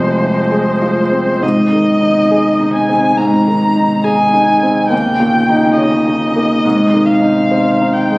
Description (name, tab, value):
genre	classical, slow romantic movement for piano trio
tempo	69 BPM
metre	4/4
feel	rubato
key	unclear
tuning	A4 = 440 Hz
part	muted violin	melody	0.0-8.2 s	C5 to Bb5	-16 LUFS	equal	none
part	muted cello	second line	0.0-8.2 s	C3 to Ab3	-20 LUFS	right 1 dB	none
part	warm concert grand piano	accompaniment	0.0-8.2 s	Eb2 to Db5	-12 LUFS	equal	none
room	moderate scoring stage reverb, RT60 2.1 s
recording	recorded on a phone in the room, club reverb, compression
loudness	-10 LUFS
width	side -23 dB against mid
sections	0.0-8.2 A section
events	none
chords	0.0 Fm; 1.4 Ab; 4.9 Eb7; 6.6 Ab